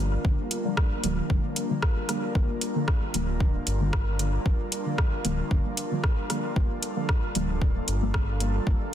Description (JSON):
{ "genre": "dub techno", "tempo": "114 BPM", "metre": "4/4", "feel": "straight", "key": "G minor", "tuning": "A4 = 443 Hz", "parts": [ { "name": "airy breathy pad", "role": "sustained chords", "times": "0.0-8.9 s", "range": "G3 to Bb4", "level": "-34 LUFS", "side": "equal", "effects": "chorus, sidechain pumping" }, { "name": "deep mellow chord stab", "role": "stabs", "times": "0.0-8.9 s", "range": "D3 to Bb3", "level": "-32 LUFS", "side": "equal", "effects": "chorus, phaser, sidechain pumping, dub echo" }, { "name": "round analog bass", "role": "bass", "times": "0.0-8.8 s", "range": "D1 to G1", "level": "-28 LUFS", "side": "equal", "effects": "tube saturation, sidechain pumping" }, { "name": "bubbling stepped-filter texture", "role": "texture", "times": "0.0-8.9 s", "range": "Bb3", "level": "-38 LUFS", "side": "left 2 dB", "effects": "chorus, built-in reverb, sidechain pumping" }, { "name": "electronic kick drum", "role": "drums", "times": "0.2-8.8 s", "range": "none", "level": "-25 LUFS", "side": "equal", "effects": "small room ambience" }, { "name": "deep house drum kit", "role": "drums", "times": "0.5-8.5 s", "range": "hi-hat, rim click", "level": "-32 LUFS", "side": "equal", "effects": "small room ambience, soft clipping on snare, dub echo" } ], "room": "digital ambience", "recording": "dense, heavily limited modern master", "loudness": "-24 LUFS", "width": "side -11 dB against mid", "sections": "0.0-8.9 A section", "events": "none", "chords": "0.0 Gm7" }